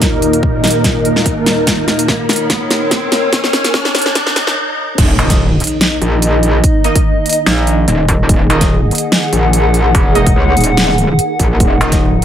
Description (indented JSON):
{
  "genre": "heavy wobble dubstep",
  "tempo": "145 BPM",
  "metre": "4/4",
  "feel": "swing 54% on 16ths, half-time",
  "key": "Eb minor",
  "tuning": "A4 = 438 Hz",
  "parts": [
    { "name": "supersaw pad", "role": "sustained chords", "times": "0.0-12.2 s", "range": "Eb2 to Bb4", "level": "-18 LUFS", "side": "right 1 dB", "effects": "phaser, sidechain pumping, low-pass filter" },
    { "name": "big-room dance drum kit", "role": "drums", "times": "0.0-12.2 s", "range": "crash cymbal, hi-hat, snare drum", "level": "-15 LUFS", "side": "equal", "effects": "none" },
    { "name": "electronic kick drum", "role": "drums", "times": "0.0-12.0 s", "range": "none", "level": "-14 LUFS", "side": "equal", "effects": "none" },
    { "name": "riser and impact", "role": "sound effects", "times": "0.2-6.6 s", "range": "none", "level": "-21 LUFS", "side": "equal", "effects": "none" },
    { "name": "warbly tape-like pad", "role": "texture", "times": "0.0-12.2 s", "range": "Eb4 to Gb5", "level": "-19 LUFS", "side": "left 2 dB", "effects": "chorus, built-in reverb, sidechain pumping" },
    { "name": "metallic wobble bass", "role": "bass", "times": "5.0-11.8 s", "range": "Eb1 to Db2", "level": "-13 LUFS", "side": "equal", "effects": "distortion, chorus, overdrive" },
    { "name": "orchestra-hit-like synth stab", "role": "stabs", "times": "5.2-11.9 s", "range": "Bb3 to Eb5", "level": "-21 LUFS", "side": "right 2 dB", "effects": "built-in reverb, tape echo" },
    { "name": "metallic wobble bass", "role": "bass", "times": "5.2-12.2 s", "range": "Eb1 to Bb1", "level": "-14 LUFS", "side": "equal", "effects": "chorus, overdrive" }
  ],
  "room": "light reverb, digital ambience",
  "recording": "high-pass filter",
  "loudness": "-10 LUFS",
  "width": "side -10 dB against mid",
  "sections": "0.0-5.0 A section; 5.0-12.2 B section",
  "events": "build-up 0.0-5.0; drum fill 0.0-4.6; filter sweep on supersaw synth 0.0-5.0; filter sweep 0.0-5.0; riser 0.2-4.6; stop 4.6-5.0; drop 5.0-12.2; impact 5.0-6.6",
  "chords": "0.0 Eb5"
}